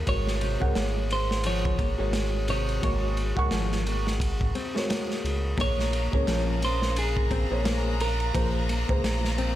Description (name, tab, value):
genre	trip hop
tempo	87 BPM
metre	4/4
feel	swing 58% on 16ths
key	unclear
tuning	A4 = 438 Hz
part	felt-muted upright piano	accompaniment	0.0-9.6 s	Ab3 to Db6	-32 LUFS	left 1 dB	harmonic tremolo, vintage 12-bit sampler grit, tape echo
part	nylon-string guitar	arpeggios	0.0-9.6 s	C3 to C4	-35 LUFS	left 5 dB	tape echo
part	round analog bass	bass	0.0-9.6 s	Ab1 to Db2	-28 LUFS	equal	none
part	clean electric guitar	melody	0.1-8.7 s	Ab4 to Db5	-32 LUFS	right 2 dB	tape echo
part	crunchy breakbeat drum kit	drums	0.1-9.6 s	kick drum, ride cymbal, snare drum	-30 LUFS	equal	none
part	rich studio violin section	sustained chords	5.6-9.6 s	Bb3 to Bb5	-36 LUFS	equal	none
room	studio reverb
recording	none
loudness	-24 LUFS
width	side -13 dB against mid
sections	0.0-9.6 A section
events	none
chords	0.1 Ab9sus4; 5.6 Bbm9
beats	| 0.07 0.76 1.45 2.14 | 2.83 3.52 4.21 4.90 | 5.59 6.28 6.97 7.66 | 8.35 9.04